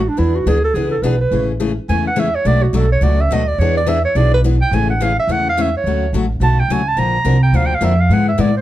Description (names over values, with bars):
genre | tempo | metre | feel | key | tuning
acoustic string swing (jazz manouche) | 212 BPM | 4/4 | swing 58% on 8ths | A major | A4 = 442 Hz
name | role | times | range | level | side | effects
breathy clarinet | melody | 0.0-8.6 s | D4 to Bb5 | -18 LUFS | right 3 dB | plate reverb
upright bass | bass | 0.0-8.6 s | A1 to A2 | -16 LUFS | right 1 dB | none
picked steel-string acoustic guitar | accompaniment | 0.2-8.5 s | B2 to Bb4 | -20 LUFS | left 6 dB | none
room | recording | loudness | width
light reverb | dark, warm production | -13 LUFS | side -14 dB against mid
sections
0.0-5.9 A section; 5.9-8.6 A section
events
clarinet solo 0.0-8.6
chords
0.2 E7; 1.3 Amaj7; 2.5 Bm7; 3.6 E7; 4.7 Amaj7; 5.9 Dmaj7; 7.0 Bb; 8.1 E7/G#